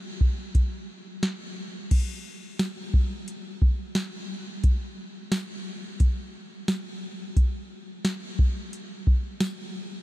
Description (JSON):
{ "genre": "dream pop", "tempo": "88 BPM", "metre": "4/4", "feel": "straight", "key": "none", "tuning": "none", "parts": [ { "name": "soft vintage rhythm box", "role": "drums", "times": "0.2-9.6 s", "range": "crash cymbal, hi-hat, kick drum, snare drum, tambourine", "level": "-25 LUFS", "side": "equal", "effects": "overdrive" } ], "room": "light reverb", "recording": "none", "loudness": "-25 LUFS", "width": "side -16 dB against mid", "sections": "0.0-1.9 A section; 1.9-10.0 B section", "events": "none", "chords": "none" }